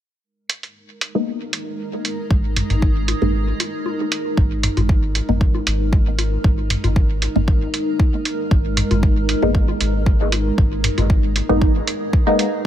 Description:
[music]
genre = dub techno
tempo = 116 BPM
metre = 4/4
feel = straight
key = G# minor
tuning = A4 = 439 Hz
[part]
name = granular cloud pad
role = sustained chords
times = 1.3-12.7 s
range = G#3 to A#4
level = -25 LUFS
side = equal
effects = built-in reverb, sidechain pumping
[part]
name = electronic hi-hat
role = drums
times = 0.5-12.5 s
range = none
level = -23 LUFS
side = right 3 dB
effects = none
[part]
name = filtered dub chord stab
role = stabs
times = 1.1-12.5 s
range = G#3 to D#4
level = -23 LUFS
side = left 1 dB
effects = phaser, sidechain pumping, dub echo
[part]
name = soft dub sub bass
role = bass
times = 2.3-11.8 s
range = G#1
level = -21 LUFS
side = equal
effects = tube saturation, sidechain pumping
[part]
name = electronic kick drum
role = drums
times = 2.3-12.2 s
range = none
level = -16 LUFS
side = equal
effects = none
[part]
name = electronic toms and congas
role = percussion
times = 2.6-11.6 s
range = none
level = -26 LUFS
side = left 2 dB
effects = sidechain pumping on toms, sidechain pumping on perc, dub echo
[sound]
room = little or no reverb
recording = none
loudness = -16 LUFS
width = side -11 dB against mid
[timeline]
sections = 0.2-4.4 A section; 4.4-12.7 B section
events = filter sweep on synth stab 0.2-4.4; break 3.3-4.4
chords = 0.2 G#madd9

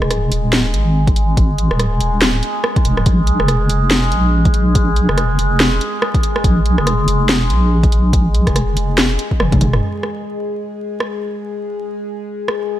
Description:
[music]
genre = deep dubstep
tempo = 142 BPM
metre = 4/4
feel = swing 59% on 16ths, half-time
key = unclear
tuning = A4 = 439 Hz
[part]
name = overtone-sweeping drone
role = sustained chords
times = 0.0-12.8 s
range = G#3 to G#4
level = -21 LUFS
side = equal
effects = chorus, built-in reverb
[part]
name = deep soft wobble bass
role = bass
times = 0.0-9.8 s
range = D#1 to A#1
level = -15 LUFS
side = equal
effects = chorus
[part]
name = garage drum kit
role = drums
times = 0.0-12.6 s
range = hi-hat, rim click, snare drum, toms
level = -19 LUFS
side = equal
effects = overdrive
[part]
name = electronic kick drum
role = drums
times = 1.1-9.6 s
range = none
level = -16 LUFS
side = equal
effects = none
[sound]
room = light reverb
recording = vinyl crackle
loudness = -13 LUFS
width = side -13 dB against mid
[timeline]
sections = 0.0-9.8 A section; 9.8-12.8 B section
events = drum fill 9.4-9.8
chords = 0.0 G#5; 3.1 A#5; 9.8 N.C.

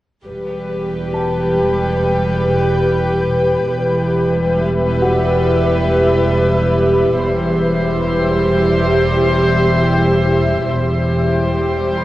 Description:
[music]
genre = cinematic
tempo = 69 BPM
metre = 4/4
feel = straight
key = E minor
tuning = A4 = 443 Hz
[part]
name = shimmering ambient pad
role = sustained chords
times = 0.7-12.0 s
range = E4 to G5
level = -20 LUFS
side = equal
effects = chorus, built-in reverb
[part]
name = warm studio violin section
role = melody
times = 0.3-12.0 s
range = B4 to C5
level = -22 LUFS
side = left 2 dB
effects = none
[part]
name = rich studio viola section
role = accompaniment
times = 0.3-12.0 s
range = G3 to G4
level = -19 LUFS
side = right 1 dB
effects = none
[part]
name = dark studio double bass section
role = bass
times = 0.3-12.0 s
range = E1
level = -21 LUFS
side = right 1 dB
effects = none
[part]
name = warm studio cello section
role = bass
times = 0.3-12.0 s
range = E2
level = -20 LUFS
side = equal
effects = none
[part]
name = dark concert grand piano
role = texture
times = 1.1-12.0 s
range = F#4 to B5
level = -27 LUFS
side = equal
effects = none
[sound]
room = moderate scoring stage reverb, RT60 1.6 s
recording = worn, warbling old tape, cassette tape, warbly pitch drift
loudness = -13 LUFS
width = side -15 dB against mid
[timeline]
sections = 0.3-12.0 A section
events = none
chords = 0.3 Em; 7.2 C/E

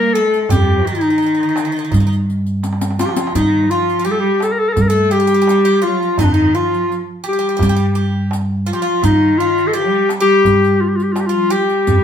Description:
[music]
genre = Turkish makam ensemble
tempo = 84 BPM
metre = 4/4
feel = straight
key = G makam ussak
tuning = A4 = 443 Hz
[part]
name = warm clarinet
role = melody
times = 0.0-12.0 s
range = D4 to Bb4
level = -15 LUFS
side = left 2 dB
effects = none
[part]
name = Greek bouzouki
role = second line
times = 0.0-12.0 s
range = Eb4 to Bb4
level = -25 LUFS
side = right 2 dB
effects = none
[part]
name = rich cello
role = second line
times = 0.0-12.0 s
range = Eb3 to Bb3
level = -23 LUFS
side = right 5 dB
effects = none
[part]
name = upright bass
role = bass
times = 0.0-12.0 s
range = F2 to G3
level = -18 LUFS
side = equal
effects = none
[part]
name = darbuka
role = percussion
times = 0.3-12.0 s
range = none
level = -20 LUFS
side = right 2 dB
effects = none
[part]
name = riq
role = percussion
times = 0.3-12.0 s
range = none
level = -26 LUFS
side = left 4 dB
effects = none
[sound]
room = wet studio reverb, RT60 0.8 s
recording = band playing live in one room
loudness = -13 LUFS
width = side -8 dB against mid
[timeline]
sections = 0.0-12.0 A section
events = drum fill 2.6-3.4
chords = none

